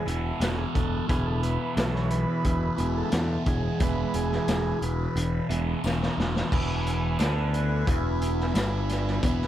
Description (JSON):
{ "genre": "psychedelic rock", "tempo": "88 BPM", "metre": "4/4", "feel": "straight", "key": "E mixolydian", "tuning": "A4 = 441 Hz", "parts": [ { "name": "combo organ", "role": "sustained chords", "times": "0.0-9.5 s", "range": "E3 to G#5", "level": "-32 LUFS", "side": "right 3 dB", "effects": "none" }, { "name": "fuzz guitar", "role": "riff", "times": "0.0-9.5 s", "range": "E2 to D4", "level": "-29 LUFS", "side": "left 1 dB", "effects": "distortion, phaser" }, { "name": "modern bright picked electric bass", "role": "bass", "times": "0.1-9.5 s", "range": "E1 to E2", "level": "-28 LUFS", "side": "equal", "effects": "none" }, { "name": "raw garage drum kit", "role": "drums", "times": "0.1-9.5 s", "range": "crash cymbal, hi-hat, kick drum, snare drum", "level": "-30 LUFS", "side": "equal", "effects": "none" }, { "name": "tambourine", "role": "percussion", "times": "0.4-8.7 s", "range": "none", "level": "-48 LUFS", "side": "left 9 dB", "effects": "none" } ], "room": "moderate spring reverb, RT60 1.6 s, studio reverb", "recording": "echo-heavy mix", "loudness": "-24 LUFS", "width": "side -12 dB against mid", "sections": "0.0-6.5 A section; 6.5-9.5 B section", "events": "transistor combo organ solo 0.0-6.5; drum fill 5.8-6.5", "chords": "0.0 E" }